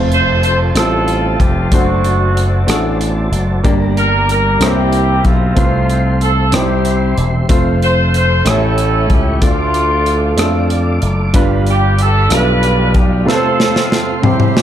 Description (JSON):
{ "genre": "slow gospel", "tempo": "62 BPM (dotted quarters)", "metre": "6/8", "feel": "straight", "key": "F major", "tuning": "A4 = 438 Hz", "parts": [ { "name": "clear concert grand piano", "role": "accompaniment", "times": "0.0-14.6 s", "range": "G2 to D5", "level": "-18 LUFS", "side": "right 1 dB", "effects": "none" }, { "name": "tonewheel organ", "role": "sustained chords", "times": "0.0-14.6 s", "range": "C4 to D6", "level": "-24 LUFS", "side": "right 2 dB", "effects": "slow rotary speaker, chorus vibrato" }, { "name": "slap bass with an envelope filter", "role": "bass", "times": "0.0-13.2 s", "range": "E1 to F2", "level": "-15 LUFS", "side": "equal", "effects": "none" }, { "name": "mellow horn section", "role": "melody", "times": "0.1-14.6 s", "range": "A3 to C5", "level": "-16 LUFS", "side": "right 1 dB", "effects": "none" }, { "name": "modern studio drum kit", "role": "drums", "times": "0.1-14.6 s", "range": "hi-hat, kick drum, rim click, snare drum, toms", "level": "-16 LUFS", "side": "equal", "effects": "none" } ], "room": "light reverb", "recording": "dark, warm production", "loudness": "-11 LUFS", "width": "side -10 dB against mid", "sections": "0.0-14.6 A section", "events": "drum fill 13.3-14.6", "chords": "0.0 F; 1.7 D7/F#; 3.6 Gm; 4.6 C7; 5.6 F/C; 6.5 C; 7.5 F; 8.5 A7; 9.4 Dm; 11.3 G7; 13.3 F/C" }